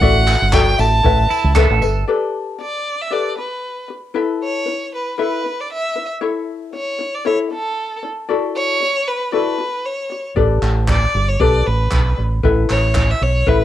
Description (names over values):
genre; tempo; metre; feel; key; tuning
acoustic pop; 116 BPM; 4/4; swing 55% on 16ths; unclear; A4 = 440 Hz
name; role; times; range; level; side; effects
clear violin; melody; 0.0-13.6 s; A4 to A5; -20 LUFS; equal; cassette tape, plate reverb
ukulele; accompaniment; 0.0-13.6 s; E4 to E5; -20 LUFS; left 6 dB; cassette tape, plate reverb
fingered electric bass with an envelope filter; bass; 0.0-2.0, 10.4-13.6 s; G1 to C#2; -16 LUFS; right 1 dB; none
jazz brush drum kit; drums; 0.0-2.0, 10.4-13.6 s; handclaps, kick drum, tambourine; -20 LUFS; right 1 dB; none
pedal steel guitar; second line; 1.3-2.0 s; E4 to A4; -22 LUFS; right 9 dB; cassette tape
room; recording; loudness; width
moderate small room reverb, RT60 0.6 s; home recording on cassette; -15 LUFS; side -12 dB against mid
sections
0.0-2.1 A section; 2.1-13.6 B section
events
none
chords
0.0 Dadd9; 1.0 Aadd9; 2.1 G; 4.2 Esus4; 6.2 A; 8.3 Dadd9; 10.4 G; 12.4 Esus4/A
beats
| 0.02 0.53 1.05 1.56 | 2.08 2.60 3.12 3.63 | 4.15 4.67 5.19 5.71 | 6.23 6.75 7.26 7.78 | 8.30 8.82 9.34 9.85 | 10.37 10.89 11.40 11.92 | 12.44 12.96 13.47